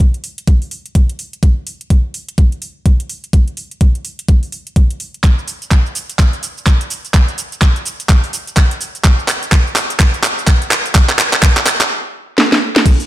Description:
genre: house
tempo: 126 BPM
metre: 4/4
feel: swing 60% on 16ths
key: none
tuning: none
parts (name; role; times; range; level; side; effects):
- electronic kick drum; drums; 0.0-13.0 s; none; -10 LUFS; equal; studio reverb
- garage drum kit; drums; 0.0-13.1 s; crash cymbal, handclaps, hi-hat, shaker, snare drum; -15 LUFS; right 1 dB; studio reverb
room: light reverb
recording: none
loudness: -12 LUFS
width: side -14 dB against mid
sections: 0.0-12.9 A section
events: build-up 0.0-12.9; drum fill 5.2-11.9, 12.4-12.9; stop 11.9-12.9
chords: none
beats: 0.00 0.48 0.95 | 1.43 1.90 2.38 2.86 | 3.33 3.81 4.29 4.76 | 5.24 5.71 6.19 6.67 | 7.14 7.62 8.10 8.57 | 9.05 9.52 10.00 10.48 | 10.95 11.43 11.90 12.38 | 12.86

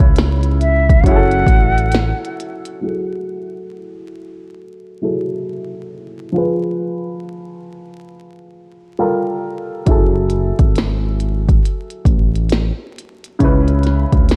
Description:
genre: lo-fi hip hop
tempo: 68 BPM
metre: 4/4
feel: swing 65% on 16ths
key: F# minor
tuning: A4 = 440 Hz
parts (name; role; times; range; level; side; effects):
- breathy silver concert flute; melody; 0.0-2.4 s; C#5 to F#5; -22 LUFS; equal; low-pass filter
- warm upright piano; accompaniment; 0.0-14.4 s; C#3 to E5; -23 LUFS; equal; low-pass filter
- smooth synth bass; bass; 0.0-2.1, 9.9-14.4 s; F#1 to D2; -19 LUFS; equal; none
- minimal click drum kit; drums; 0.0-2.8, 9.9-14.4 s; hi-hat, kick drum, snare drum; -16 LUFS; equal; none
room: light reverb, small room ambience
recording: vinyl crackle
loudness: -16 LUFS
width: mono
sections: 0.0-2.8 A section; 2.8-14.4 B section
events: filter sweep on upright piano 2.8-14.4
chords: 0.0 C#m7; 1.0 F#m7; 2.8 F#m9; 6.3 Fdim; 9.0 Gm9; 9.9 F#m9; 13.4 C#m7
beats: 0.17 1.05 1.93 | 2.81 3.69 4.58 5.46 | 6.34 7.22 8.11 8.99 | 9.87 10.75 11.63 12.52 | 13.40 14.28

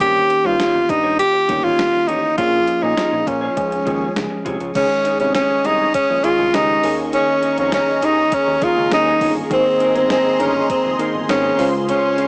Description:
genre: 1980s-style pop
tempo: 101 BPM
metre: 4/4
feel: straight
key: Eb mixolydian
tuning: A4 = 440 Hz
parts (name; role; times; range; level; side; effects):
- clear tenor saxophone; melody; 0.0-12.3 s; C4 to G4; -19 LUFS; equal; cassette tape
- tine electric piano; accompaniment; 0.0-12.3 s; Db3 to C5; -27 LUFS; equal; cassette tape
- electric guitar through a small old amp; riff; 0.0-12.3 s; Db4 to Db5; -31 LUFS; equal; none
- fat analog bass; bass; 0.0-11.9 s; F1 to Bb2; -30 LUFS; equal; none
- clean 12-bit digital drum machine; drums; 0.0-12.3 s; crash cymbal, hi-hat, kick drum, snare drum; -29 LUFS; equal; overdrive, cassette tape
- lush unison pad; sustained chords; 4.8-12.3 s; Ab4 to Eb6; -27 LUFS; equal; chorus, phaser, cassette tape
room: moderate small room reverb, RT60 0.5 s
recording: home recording on cassette, small speaker sound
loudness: -17 LUFS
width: mono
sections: 0.0-4.8 A section; 4.8-12.3 B section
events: none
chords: 0.0 Eb7/G; 2.4 Bbm7; 3.6 Db; 4.8 Dbsus2; 6.8 Eb7sus4; 9.5 Abadd9; 11.6 Dbmaj7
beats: | 0.01 0.60 1.19 1.79 | 2.38 2.98 3.57 4.16 | 4.76 5.35 5.95 6.54 | 7.13 7.73 8.32 8.92 | 9.51 10.10 10.70 11.29 | 11.89

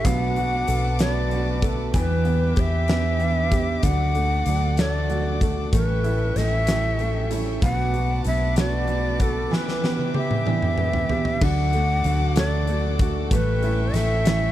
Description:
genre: six-eight pop ballad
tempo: 63 BPM (dotted quarters)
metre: 6/8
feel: straight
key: unclear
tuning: A4 = 440 Hz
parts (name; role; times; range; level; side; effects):
- breathy shakuhachi; melody; 0.0-14.5 s; A4 to F#5; -27 LUFS; left 1 dB; tape echo
- clear concert grand piano; accompaniment; 0.0-14.5 s; D3 to A4; -29 LUFS; left 1 dB; none
- rich chamber string section; sustained chords; 0.0-14.5 s; A4 to D6; -34 LUFS; left 1 dB; none
- picked steel-string acoustic guitar; arpeggios; 0.0-14.5 s; A2 to A4; -30 LUFS; right 9 dB; none
- vintage muted fingered electric bass; bass; 0.0-14.5 s; A1 to E2; -24 LUFS; equal; none
- huge arena drum kit; drums; 0.0-14.4 s; crash cymbal, hi-hat, kick drum, snare drum, toms; -26 LUFS; equal; none
room: little or no reverb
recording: none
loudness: -20 LUFS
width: side -13 dB against mid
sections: 0.0-11.4 A section; 11.4-14.5 A section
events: drum fill 9.5-11.4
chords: 0.0 Bm7; 1.9 Em7; 3.8 D; 5.7 A7; 7.6 Bm7; 9.5 Em7; 11.4 D; 13.3 A7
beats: | 0.05 0.99 | 1.94 2.89 | 3.83 4.78 | 5.73 6.68 | 7.62 8.57 | 9.52 10.47 | 11.41 12.36 | 13.31 14.26

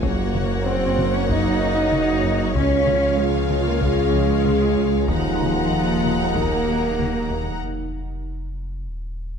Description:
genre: cinematic, hybrid orchestral and electronic film score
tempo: 95 BPM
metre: 4/4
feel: straight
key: Eb minor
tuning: A4 = 442 Hz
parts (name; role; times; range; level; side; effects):
- clear symphonic violin section; melody; 0.0-7.6 s; F5 to Bb5; -33 LUFS; left 2 dB; none
- warm studio violin section; second line; 0.0-7.6 s; Db5 to Gb5; -31 LUFS; left 3 dB; none
- warm symphonic viola section; accompaniment; 0.0-7.6 s; Bb3 to F4; -31 LUFS; right 3 dB; none
- clear trombone section; sustained chords; 0.0-7.6 s; Gb3 to Eb4; -32 LUFS; right 5 dB; none
- mellow French horn section; sustained chords; 0.0-7.6 s; F4 to Eb5; -25 LUFS; left 4 dB; none
- harp-like synth pluck; arpeggios; 0.0-7.5 s; Db3 to Gb4; -31 LUFS; left 1 dB; chorus, phaser, tape echo
- plucky analog bass; riff; 0.0-7.5 s; Db2 to Gb3; -31 LUFS; left 3 dB; none
- rich symphonic double bass section; bass; 0.0-7.6 s; Db2 to Gb2; -28 LUFS; right 3 dB; none
- warm studio cello section; bass; 0.0-7.6 s; F3 to Eb4; -25 LUFS; right 3 dB; none
- warm sub bass; bass; 0.0-9.4 s; Eb1 to Db2; -29 LUFS; equal; none
- warm tuba; bass; 0.0-7.6 s; Gb1 to Eb2; -28 LUFS; right 5 dB; none
- taiko ensemble; drums; 0.0-7.3 s; none; -30 LUFS; left 1 dB; none
room: moderate scoring stage reverb, RT60 2.2 s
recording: dark, warm production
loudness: -18 LUFS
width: side -6 dB against mid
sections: 0.0-9.4 A section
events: break 7.6-9.4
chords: 0.0 Gb; 2.6 Db; 5.1 Ebmadd9; 7.6 N.C.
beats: | 0.03 0.66 1.29 1.93 | 2.56 3.19 3.82 4.45 | 5.08 5.72 6.35 6.98 | 7.61 8.24 8.87

